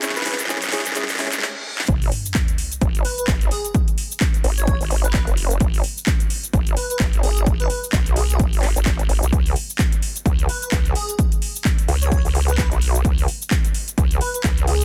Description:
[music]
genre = bass house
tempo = 129 BPM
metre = 4/4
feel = swing 57% on 16ths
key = unclear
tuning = A4 = 439 Hz
[part]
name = percussive organ stab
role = stabs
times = 0.0-1.3 s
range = C#4 to C#5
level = -32 LUFS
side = equal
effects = lush chorus, sidechain pumping, delay
[part]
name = house drum kit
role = drums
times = 0.0-14.8 s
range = handclaps, hi-hat, shaker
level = -28 LUFS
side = equal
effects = overdrive
[part]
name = riser, reverse cymbal and sub drop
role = sound effects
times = 0.1-3.7 s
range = none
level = -34 LUFS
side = equal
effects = none
[part]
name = airy dreamy lead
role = melody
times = 0.2-14.8 s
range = G#4 to C#5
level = -31 LUFS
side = equal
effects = chorus
[part]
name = vowel-sweep wobble bass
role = bass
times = 1.9-14.8 s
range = F#1 to C#2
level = -22 LUFS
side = equal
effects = chorus, overdrive, sidechain pumping
[part]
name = electronic kick drum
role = drums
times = 1.9-14.5 s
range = none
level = -22 LUFS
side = equal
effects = overdrive
[sound]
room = digital ambience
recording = dense, heavily limited modern master, high-pass filter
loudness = -20 LUFS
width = mono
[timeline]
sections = 0.0-1.9 A section; 1.9-14.8 B section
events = build-up 0.0-1.9; drum fill 0.0-1.4, 1.4-1.9; riser 0.1-1.4; reverse cymbal 1.0-1.9; drop 1.9-14.8; impact 1.9-3.7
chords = 0.0 C#m; 1.9 N.C.

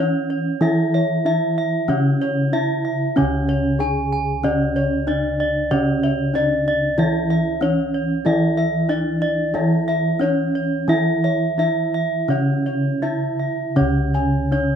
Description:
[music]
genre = Javanese gamelan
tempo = 80-94 BPM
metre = 4/4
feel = straight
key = unclear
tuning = A4 = 441 Hz
[part]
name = gamelan-type bronze metallophone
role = melody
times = 0.0-14.8 s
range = C#4 to G#4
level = -24 LUFS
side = right 2 dB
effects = plate reverb
[part]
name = gamelan-type bronze metallophone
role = accompaniment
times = 0.0-14.8 s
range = C#3 to E3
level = -23 LUFS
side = left 1 dB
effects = none
[part]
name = gamelan-type bossed gongs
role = arpeggios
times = 0.0-14.8 s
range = C#5 to G#5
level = -26 LUFS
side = left 8 dB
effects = plate reverb
[part]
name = gamelan-type bronze metallophone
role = arpeggios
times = 0.0-14.8 s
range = C#5 to G#5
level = -24 LUFS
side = right 4 dB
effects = plate reverb
[part]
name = gamelan-type bossed gongs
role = bass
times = 0.0-14.8 s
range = C#2 to E4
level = -24 LUFS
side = equal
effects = none
[sound]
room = wet studio reverb, RT60 0.6 s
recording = rough home demo mix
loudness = -17 LUFS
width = side -8 dB against mid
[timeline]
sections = 0.0-13.8 A section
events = none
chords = none

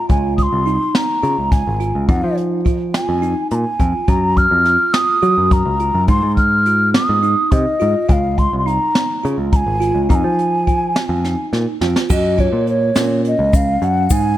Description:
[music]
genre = progressive instrumental, band music in an uneven meter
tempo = 210 BPM (eighths)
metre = 7/8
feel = straight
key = unclear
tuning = A4 = 440 Hz
[part]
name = mellow hollow wooden flute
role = melody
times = 0.0-14.4 s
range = Db5 to F6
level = -18 LUFS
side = equal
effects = none
[part]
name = bell-like tine electric piano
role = arpeggios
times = 0.0-14.4 s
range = Db4 to Gb4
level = -23 LUFS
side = right 3 dB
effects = phaser
[part]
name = picked electric bass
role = bass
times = 0.1-14.4 s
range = Ab1 to Gb3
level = -18 LUFS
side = equal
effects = none
[part]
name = jazz brush drum kit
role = drums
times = 0.1-14.2 s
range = crash cymbal, hi-hat, kick drum, snare drum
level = -17 LUFS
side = equal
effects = none
[part]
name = egg shaker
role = percussion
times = 12.1-14.4 s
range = none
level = -32 LUFS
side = left 11 dB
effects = none
[sound]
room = light reverb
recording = none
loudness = -14 LUFS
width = side -13 dB against mid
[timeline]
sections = 0.0-12.1 A section; 12.1-14.4 B section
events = drum fill 11.5-12.1; flute solo 12.1-14.4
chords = 0.1 Dbadd9; 2.1 Fm; 4.1 Gbmaj7; 6.1 Ab5; 8.1 Dbadd9; 10.1 Fm; 12.1 Gbmaj7

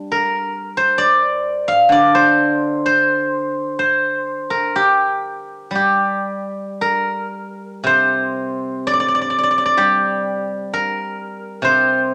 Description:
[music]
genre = chinese traditional, Chinese solo plucked strings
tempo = 54-68 BPM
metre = 4/4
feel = rubato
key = G yu mode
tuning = A4 = 442 Hz
[part]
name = steel-string zither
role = solo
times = 0.0-12.1 s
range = C3 to F5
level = -18 LUFS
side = equal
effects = none
[sound]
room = moderate large studio reverb, RT60 0.9 s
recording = none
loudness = -17 LUFS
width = mono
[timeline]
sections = 0.0-7.9 A section; 7.9-12.1 B section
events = none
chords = none

